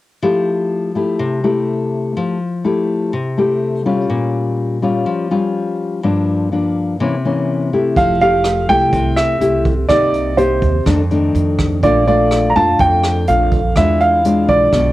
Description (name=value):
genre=bossa nova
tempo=124 BPM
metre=4/4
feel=straight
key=F major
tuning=A4 = 441 Hz
part: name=nylon-string guitar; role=accompaniment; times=0.2-14.9 s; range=F2 to G4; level=-16 LUFS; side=left 2 dB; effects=cassette tape
part: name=warm grand piano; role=melody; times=8.0-14.9 s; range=C5 to Bb5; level=-14 LUFS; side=right 2 dB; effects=none
part: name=upright bass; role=bass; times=8.0-14.9 s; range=F1 to F2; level=-19 LUFS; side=right 2 dB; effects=none
part: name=jazz brush drum kit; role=drums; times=8.0-14.8 s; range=hi-hat, kick drum, rim click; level=-21 LUFS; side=right 1 dB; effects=cassette tape
room=moderate studio reverb, RT60 0.6 s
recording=home recording on cassette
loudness=-13 LUFS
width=side -16 dB against mid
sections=0.2-8.0 A section; 8.0-14.9 B section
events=none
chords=0.2 Fmaj9; 4.1 Bbm6; 6.0 Gm7; 7.0 C7b9; 8.0 Fmaj9; 9.9 Cm7; 10.9 F6; 11.8 Bbmaj7; 13.8 E7b9